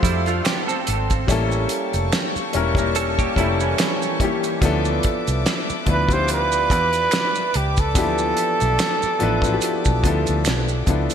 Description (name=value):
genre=R&B, neo-soul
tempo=72 BPM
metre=4/4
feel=swing 55% on 16ths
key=D dorian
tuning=A4 = 440 Hz
part: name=clean electric guitar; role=second line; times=0.0-4.6 s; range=E3 to A4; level=-26 LUFS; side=right 7 dB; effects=ensemble chorus, digital delay
part: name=warm grand piano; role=accompaniment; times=0.0-11.1 s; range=E3 to C5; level=-24 LUFS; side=left 4 dB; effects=none
part: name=warm studio string section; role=sustained chords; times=0.0-11.1 s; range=Bb3 to D6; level=-30 LUFS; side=left 2 dB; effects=none
part: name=vintage muted fingered electric bass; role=bass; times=0.0-11.1 s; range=E1 to F2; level=-23 LUFS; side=equal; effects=none
part: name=warm soul drum kit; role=drums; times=0.0-11.1 s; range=hi-hat, kick drum, snare drum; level=-23 LUFS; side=right 1 dB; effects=gated reverb
part: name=maracas and finger snaps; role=percussion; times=0.0-11.1 s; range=none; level=-32 LUFS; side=right 7 dB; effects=none
part: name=breathy flugelhorn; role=melody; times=5.9-10.9 s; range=G4 to C5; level=-21 LUFS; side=right 3 dB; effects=none
room=moderate lush hall reverb, RT60 2.7 s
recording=bright 1980s-style digital production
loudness=-18 LUFS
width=side -8 dB against mid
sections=0.0-11.1 A section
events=none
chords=0.0 Dm7; 1.3 A7b9; 4.6 Dm69